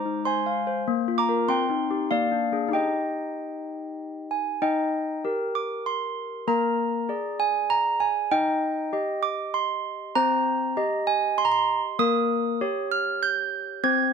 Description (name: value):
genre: classical, lullaby for handbells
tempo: 98 BPM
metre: 3/4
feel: straight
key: Eb major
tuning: A4 = 440 Hz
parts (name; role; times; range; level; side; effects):
- handbells; solo; 0.0-14.1 s; Ab3 to Ab6; -23 LUFS; right 1 dB; none
room: little or no reverb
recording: close, detailed microphones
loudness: -23 LUFS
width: side -6 dB against mid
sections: 0.0-4.6 A section; 4.6-14.1 B section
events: none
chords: 0.0 Fm7/Ab; 0.9 Bb; 1.5 Cm; 2.1 Bb7; 2.7 Eb; 6.5 Bb7; 8.3 Eb; 10.2 Cm; 12.0 Eb7/Bb